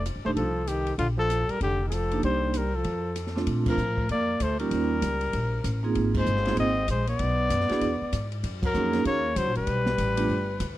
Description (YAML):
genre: jazz, small-group swing and bop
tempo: 194 BPM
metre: 4/4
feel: swing 62% on 8ths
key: Bb major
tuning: A4 = 440 Hz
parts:
  - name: warm trumpet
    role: melody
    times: 0.0-10.8 s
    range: F4 to Eb5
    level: -29 LUFS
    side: left 3 dB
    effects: tape echo
  - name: growling trombone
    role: second line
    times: 0.0-10.8 s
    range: D3 to C4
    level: -32 LUFS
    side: right 3 dB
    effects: none
  - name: upright bass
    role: bass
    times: 0.0-10.8 s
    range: E1 to Bb2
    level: -29 LUFS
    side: equal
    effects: none
  - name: open jazz drum kit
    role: drums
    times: 0.1-10.7 s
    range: crash cymbal, hi-hat, kick drum, ride cymbal, snare drum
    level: -36 LUFS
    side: equal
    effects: none
  - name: vibraphone with medium hard mallets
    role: accompaniment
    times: 0.3-10.3 s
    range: A3 to Ab4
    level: -28 LUFS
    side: right 4 dB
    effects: none
room: little or no reverb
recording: dry, close 1970s-style studio recording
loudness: -24 LUFS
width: side -15 dB against mid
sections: 0.0-3.5 A section; 3.5-10.8 B section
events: band accent 3.6, 6.1, 8.6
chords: 0.0 F9; 1.0 Bbmaj7(no3); 2.2 Cm7; 2.9 F; 3.5 Bbmaj7; 4.7 Eb7; 6.0 Ab6; 7.2 Bm; 7.8 E7; 8.4 Gb6; 9.7 G